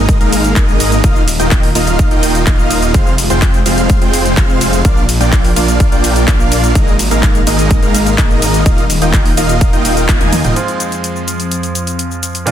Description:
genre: EDM, festival progressive house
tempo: 126 BPM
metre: 4/4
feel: straight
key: F dorian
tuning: A4 = 440 Hz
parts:
  - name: lush unison pad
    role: sustained chords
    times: 0.0-12.5 s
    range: F2 to Bb4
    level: -20 LUFS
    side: equal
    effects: chorus, sidechain pumping
  - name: big supersaw lead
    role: riff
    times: 0.0-10.5 s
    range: Ab3 to Ab5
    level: -15 LUFS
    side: right 1 dB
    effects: sidechain pumping, ping-pong delay
  - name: wide detuned saw bass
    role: bass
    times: 0.0-10.5 s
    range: Eb1 to Eb2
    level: -16 LUFS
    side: equal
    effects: chorus, sidechain pumping
  - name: big-room dance drum kit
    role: drums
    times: 0.1-12.5 s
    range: handclaps, hi-hat, ride cymbal, shaker, toms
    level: -19 LUFS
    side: equal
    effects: overdrive
  - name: electronic kick drum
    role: drums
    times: 0.1-10.2 s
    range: none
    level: -12 LUFS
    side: equal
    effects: overdrive
  - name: bright grand piano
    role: accompaniment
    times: 10.6-12.5 s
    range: Bb2 to F4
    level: -19 LUFS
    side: right 3 dB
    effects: sidechain pumping, ping-pong delay
room: little or no reverb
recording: dense, heavily limited modern master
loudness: -10 LUFS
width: side -10 dB against mid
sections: 0.0-10.6 A section; 10.6-12.5 B section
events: drop 0.0-10.6; band accent 10.1; drum fill 10.2-10.6; filter sweep on analog synth pad 10.6-12.5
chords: 0.0 Absus2; 1.0 Ebsus2; 2.9 Fm; 4.8 Bb; 6.8 Absus2; 8.7 Ebsus2; 10.6 Fm

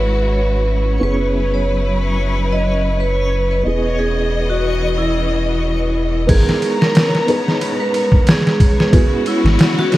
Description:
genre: trip hop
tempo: 91 BPM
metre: 4/4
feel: swing 55% on 16ths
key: G# minor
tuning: A4 = 440 Hz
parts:
  - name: vibraphone with medium hard mallets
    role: melody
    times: 0.0-10.0 s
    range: E4 to D#5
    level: -20 LUFS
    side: right 1 dB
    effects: vintage 12-bit sampler grit, tape echo
  - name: felt-muted upright piano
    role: accompaniment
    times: 0.0-10.0 s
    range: B3 to D#5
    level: -22 LUFS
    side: equal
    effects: tremolo, vintage 12-bit sampler grit, tape echo
  - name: warm studio string section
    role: sustained chords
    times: 0.0-10.0 s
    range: E3 to A#5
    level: -23 LUFS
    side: left 1 dB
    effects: none
  - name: soft dub sub bass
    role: bass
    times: 0.0-9.6 s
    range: E1 to G#1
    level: -18 LUFS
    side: equal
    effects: none
  - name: backwards swelling texture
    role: texture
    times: 0.0-10.0 s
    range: C#4 to C#5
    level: -28 LUFS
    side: right 1 dB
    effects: built-in reverb
  - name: trip hop sampler-style drum kit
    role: drums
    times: 6.3-10.0 s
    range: crash cymbal, kick drum, ride cymbal, snare drum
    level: -14 LUFS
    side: equal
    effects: overdrive
room: small room reverb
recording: echo-heavy mix, vinyl crackle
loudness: -14 LUFS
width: side -16 dB against mid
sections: 0.0-6.3 A section; 6.3-10.0 B section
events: none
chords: 0.0 Eadd9/G#; 1.0 F#7sus4; 3.7 C#m7/E; 6.3 G#madd9; 8.9 Eadd9/G#

